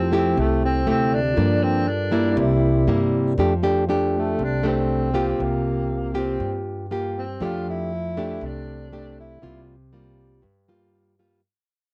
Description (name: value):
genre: bossa nova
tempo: 119 BPM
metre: 4/4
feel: straight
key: F major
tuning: A4 = 440 Hz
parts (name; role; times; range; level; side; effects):
- breathy tenor saxophone; melody; 0.0-9.7 s; A3 to F4; -30 LUFS; equal; cassette tape
- nylon-string guitar; accompaniment; 0.0-11.4 s; G2 to G4; -24 LUFS; equal; cassette tape
- tine electric piano; accompaniment; 0.0-3.4 s; E4 to D5; -32 LUFS; equal; cassette tape
- upright bass; bass; 0.0-11.4 s; C2 to G2; -29 LUFS; equal; none
room: light reverb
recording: home recording on cassette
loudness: -22 LUFS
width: mono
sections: 0.0-3.4 A section; 3.4-11.4 B section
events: fade-out 3.4-11.4; tenor saxophone solo 3.4-11.4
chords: 0.0 Fmaj9; 1.4 Gm7; 2.4 C7; 3.4 F69; 5.4 C7sus4; 7.4 F69; 9.4 C7sus4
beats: 0.36 0.86 | 1.36 1.87 2.37 2.87 | 3.37 3.88 4.38 4.88 | 5.38 5.89 6.39 6.89 | 7.40 7.90 8.41 8.91 | 9.41 9.92 10.42 10.93